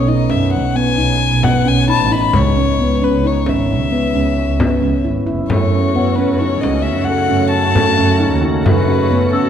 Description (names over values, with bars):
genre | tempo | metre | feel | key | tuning
contemporary instrumental, chamber music in an uneven meter | 133 BPM | 7/4 | straight | unclear | A4 = 441 Hz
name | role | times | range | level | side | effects
dark violin | melody | 0.0-9.5 s | A4 to B5 | -19 LUFS | left 6 dB | none
handpan | arpeggios | 0.0-9.5 s | G#3 to E4 | -17 LUFS | equal | none
muted double bass | bass | 0.0-9.5 s | F#1 to F#2 | -18 LUFS | right 3 dB | none
celesta | texture | 0.0-9.5 s | F#5 to E6 | -25 LUFS | left 9 dB | none
frame drum | percussion | 0.1-8.9 s | none | -21 LUFS | left 3 dB | none
soft additive organ-like pad | sustained chords | 5.8-9.5 s | C#3 to F#4 | -22 LUFS | equal | ensemble chorus, built-in reverb
room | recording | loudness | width
moderate scoring stage reverb, RT60 1.9 s | dark, warm production | -12 LUFS | side -9 dB against mid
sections
0.0-9.5 A section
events
none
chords
0.0 B; 2.3 C#m; 5.5 F#m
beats
0.07 0.53 0.98 1.43 1.88 | 2.33 2.79 3.24 3.69 4.14 4.59 5.05 | 5.50 5.95 6.40 6.85 7.30 7.75 8.21 | 8.66 9.11